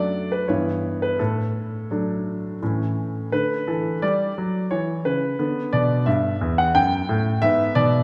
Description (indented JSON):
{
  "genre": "classical-period piano sonatina",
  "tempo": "87 BPM",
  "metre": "3/4",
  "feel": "straight",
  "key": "D major",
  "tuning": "A4 = 440 Hz",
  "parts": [
    { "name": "warm concert grand piano", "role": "solo", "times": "0.0-8.0 s", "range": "E2 to G5", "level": "-22 LUFS", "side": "equal", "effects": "none" }
  ],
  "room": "wet concert hall reverb, RT60 2.0 s",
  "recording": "recorded in a church or concert hall",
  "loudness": "-23 LUFS",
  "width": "mono",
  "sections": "0.0-3.3 A section; 3.3-8.0 B section",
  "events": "none",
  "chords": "0.5 Em/G; 1.2 D/A; 2.6 A; 3.3 D; 5.4 Em; 7.4 E7/G#",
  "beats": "0.48 | 1.19 1.91 2.62 | 3.32 4.03 4.72 | 5.39 6.07 6.75 | 7.42"
}